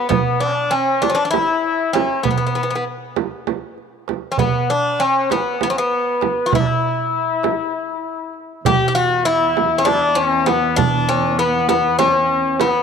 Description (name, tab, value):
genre	Turkish makam ensemble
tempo	197 BPM (eighths)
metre	7/8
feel	straight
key	E makam huseyni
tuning	A4 = 436 Hz
part	Greek bouzouki	melody	0.0-12.8 s	B3 to G4	-18 LUFS	left 1 dB	none
part	warm trumpet	second line	0.1-12.8 s	B3 to G4	-22 LUFS	left 9 dB	tape echo
part	darbuka	percussion	0.1-12.7 s	none	-24 LUFS	right 8 dB	none
part	frame drum	percussion	0.1-12.7 s	none	-22 LUFS	right 12 dB	none
part	dark cello	drone	8.7-12.8 s	E2	-26 LUFS	right 2 dB	stereo widening
room	moderate plate reverb, RT60 2.8 s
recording	1960s-style stereo with parts hard left and right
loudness	-16 LUFS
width	side -6 dB against mid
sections	0.0-8.7 A section; 8.7-12.8 B section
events	break 7.7-8.7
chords	none